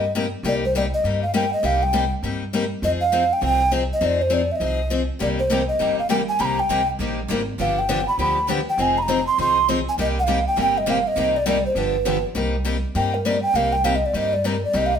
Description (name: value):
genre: acoustic string swing (jazz manouche)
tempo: 201 BPM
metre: 4/4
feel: swing 58% on 8ths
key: C minor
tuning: A4 = 440 Hz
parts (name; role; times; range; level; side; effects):
- breathy mellow alto ocarina; melody; 0.0-15.0 s; Bb4 to C6; -21 LUFS; right 1 dB; none
- picked steel-string acoustic guitar; accompaniment; 0.0-14.9 s; C3 to Ab4; -24 LUFS; left 4 dB; none
- upright bass; bass; 0.0-15.0 s; F1 to G2; -27 LUFS; right 1 dB; none
- picked steel-string acoustic guitar; accompaniment; 5.2-12.2 s; C3 to Ab4; -29 LUFS; right 3 dB; none
room: wet studio reverb, RT60 0.8 s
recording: band playing live in one room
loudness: -19 LUFS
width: side -8 dB against mid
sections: 0.0-12.4 A section; 12.4-15.0 B section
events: ocarina solo 12.4-15.0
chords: 0.0 Cm7; 2.8 Fm7; 5.2 Cm7; 7.6 G7; 8.8 Fm7; 10.0 Cm7; 11.8 G7; 12.4 Cm7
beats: 0.14 | 0.44 0.74 1.03 1.33 | 1.63 1.93 2.23 2.53 | 2.82 3.12 3.42 3.72 | 4.02 4.31 4.61 4.91 | 5.21 5.51 5.80 6.10 | 6.40 6.70 7.00 7.29 | 7.59 7.89 8.19 8.49 | 8.79 9.08 9.38 9.68 | 9.98 10.28 10.57 10.87 | 11.17 11.47 11.77 12.06 | 12.36 12.66 12.96 13.25 | 13.55 13.85 14.15 14.45 | 14.74